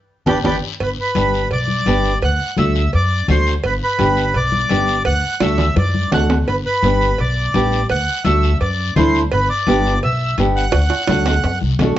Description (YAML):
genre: latin, cumbia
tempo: 169 BPM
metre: 4/4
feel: straight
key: G major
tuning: A4 = 440 Hz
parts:
  - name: accordion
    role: melody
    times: 0.3-11.6 s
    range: B4 to G5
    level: -20 LUFS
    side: right 1 dB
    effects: plate reverb
  - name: nylon-string guitar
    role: accompaniment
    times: 0.3-12.0 s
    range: A3 to G4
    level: -19 LUFS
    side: right 1 dB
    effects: none
  - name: upright bass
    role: bass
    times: 0.3-12.0 s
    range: G1 to F#2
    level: -19 LUFS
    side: equal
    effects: none
  - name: congas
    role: percussion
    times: 0.3-12.0 s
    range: none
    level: -23 LUFS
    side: left 4 dB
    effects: none
  - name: guiro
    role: percussion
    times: 0.3-12.0 s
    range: none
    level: -31 LUFS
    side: left 9 dB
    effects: none
  - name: timbales and cowbell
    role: percussion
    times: 0.3-12.0 s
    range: none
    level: -24 LUFS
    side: right 4 dB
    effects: none
room: moderate studio reverb, RT60 0.5 s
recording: worn, warbling old tape, cassette tape, warbly pitch drift, nothing above 7.7 kHz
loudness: -14 LUFS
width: side -13 dB against mid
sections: 0.8-12.0 A section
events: drum fill 0.0-0.8, 5.4-6.5, 10.7-12.0; band accent 0.0-0.8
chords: 0.0 G; 2.2 D; 3.6 G; 5.1 D; 6.5 G; 7.9 D; 9.3 G; 10.7 D7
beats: 0.08 0.44 | 0.80 1.15 1.51 1.86 | 2.22 2.57 2.93 3.28 | 3.64 3.99 4.35 4.70 | 5.06 5.41 5.77 6.12 | 6.48 6.83 7.19 7.54 | 7.90 8.25 8.61 8.96 | 9.32 9.67 10.03 10.38 | 10.74 11.09 11.45 11.80